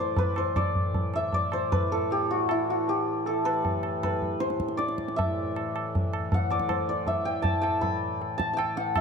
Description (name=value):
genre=indian classical, Hindustani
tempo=157 BPM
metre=4/4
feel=straight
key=A raga kafi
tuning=A4 = 440 Hz
part: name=santur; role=melody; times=0.0-9.0 s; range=E4 to B5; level=-27 LUFS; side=left 1 dB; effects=none
part: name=pedal harmonium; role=drone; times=0.0-9.0 s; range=A2 to E3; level=-35 LUFS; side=equal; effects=none
part: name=tabla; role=percussion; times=0.2-9.0 s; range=none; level=-30 LUFS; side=right 1 dB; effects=none
room=light reverb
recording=close, detailed microphones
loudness=-25 LUFS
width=side -6 dB against mid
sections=0.0-9.0 A section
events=speeding up 0.0-9.0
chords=none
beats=0.18 | 0.57 0.95 1.34 1.73 | 2.11 2.50 2.88 3.27 | 3.65 4.03 4.41 4.79 | 5.17 5.55 5.93 6.31 | 6.69 7.07 7.45 7.82 | 8.20 8.57 8.95